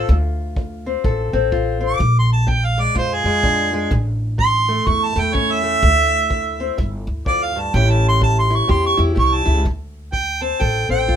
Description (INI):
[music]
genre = acoustic country blues, solo or duo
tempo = 126 BPM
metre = 4/4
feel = swing 60% on 8ths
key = D minor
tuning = A4 = 440 Hz
[part]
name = mellow harmonica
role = melody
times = 0.0-11.2 s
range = Ab4 to D6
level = -18 LUFS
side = right 3 dB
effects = none
[part]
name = fingerpicked steel-string acoustic guitar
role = accompaniment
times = 0.0-11.2 s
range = D2 to A4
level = -23 LUFS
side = left 3 dB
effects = none
[part]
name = upright bass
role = bass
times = 0.1-11.2 s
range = G1 to F2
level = -20 LUFS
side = equal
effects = none
[part]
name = kick drum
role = drums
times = 0.1-11.2 s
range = none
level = -22 LUFS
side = equal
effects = none
[sound]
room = little or no reverb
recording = minimal, uncompressed stereo recording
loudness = -16 LUFS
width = side -9 dB against mid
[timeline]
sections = 0.0-9.7 A section; 9.7-11.2 B section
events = harmonica solo 0.0-9.7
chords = 0.0 Dm7; 2.0 Bb7; 3.9 A; 5.8 Dsus2; 6.8 G5; 7.7 A7#9; 9.7 D7(no3)